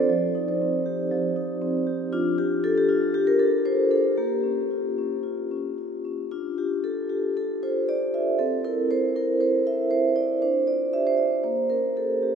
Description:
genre	classical, contemporary piece for solo vibraphone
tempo	116 BPM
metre	4/4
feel	rubato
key	unclear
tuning	A4 = 441 Hz
part	vibraphone with medium mallets	solo	0.0-12.3 s	F3 to E5	-22 LUFS	equal	none
room	wet cathedral reverb, RT60 4.5 s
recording	minimal, uncompressed stereo recording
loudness	-22 LUFS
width	side -7 dB against mid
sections	0.0-12.3 A section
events	none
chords	0.1 Eb69/F; 2.1 Dm; 4.2 Bbm6; 6.3 Dmadd11; 8.4 C7; 10.4 Dmadd11; 11.4 Bbm6

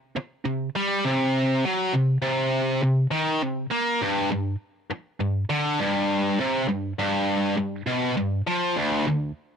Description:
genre	metal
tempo	101 BPM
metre	4/4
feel	straight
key	unclear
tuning	A4 = 443 Hz
part	tight distorted guitar	solo	0.2-9.3 s	D2 to Bb3	-22 LUFS	equal	distortion
room	little or no reverb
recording	dry, close 1970s-style studio recording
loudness	-22 LUFS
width	side -7 dB against mid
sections	0.0-9.6 A section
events	none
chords	none

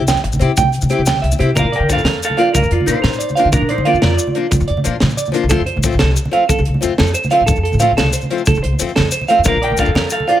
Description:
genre	highlife guitar band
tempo	122 BPM (dotted quarters)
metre	12/8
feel	straight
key	Bb major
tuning	A4 = 440 Hz
part	picked old ladder-braced acoustic guitar	accompaniment	0.0-10.4 s	F3 to G4	-21 LUFS	left 7 dB	none
part	upright bass	bass	0.0-10.1 s	A1 to D3	-18 LUFS	equal	none
part	semi-hollow electric guitar	arpeggios	0.1-10.4 s	G4 to G5	-18 LUFS	right 4 dB	slapback echo
part	tight funk drum kit	drums	0.1-10.4 s	hi-hat, kick drum, snare drum	-21 LUFS	equal	none
part	congas	percussion	0.1-10.3 s	none	-21 LUFS	right 1 dB	none
part	maracas	percussion	0.1-10.2 s	none	-25 LUFS	left 6 dB	none
part	semi-hollow electric guitar	melody	1.6-4.6, 9.5-10.4 s	D4 to G5	-18 LUFS	right 1 dB	slapback echo
room	light reverb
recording	none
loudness	-13 LUFS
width	side -12 dB against mid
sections	0.0-1.6 A section; 1.6-10.4 B section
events	none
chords	0.0 C; 1.6 Bb; 5.5 F; 9.5 Bb

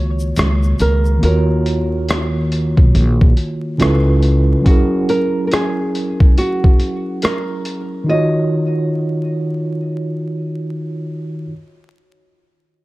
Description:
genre	lo-fi hip hop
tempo	70 BPM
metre	4/4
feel	swing 60% on 16ths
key	Eb minor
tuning	A4 = 440 Hz
part	flamenco guitar	melody	0.0-11.1 s	Gb4 to Eb5	-22 LUFS	right 1 dB	low-pass filter, tape echo
part	mellow tine electric piano	accompaniment	0.0-11.5 s	Db3 to Db5	-18 LUFS	right 1 dB	medium stereo tremolo, cassette tape, low-pass filter
part	upright bass	bass	0.0-4.5 s	Bb1 to Eb2	-16 LUFS	equal	none
part	egg shaker	percussion	0.2-1.2 s	none	-42 LUFS	left 4 dB	none
part	boom bap sampler-style drum kit	drums	0.4-7.9 s	hi-hat, kick drum, rim click	-14 LUFS	equal	none
room	small room ambience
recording	dark, warm production, vinyl crackle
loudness	-14 LUFS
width	side -19 dB against mid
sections	0.0-11.5 A section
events	none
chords	0.0 Ebm9; 3.8 Db7alt; 4.7 Gb9; 8.1 Ebm9

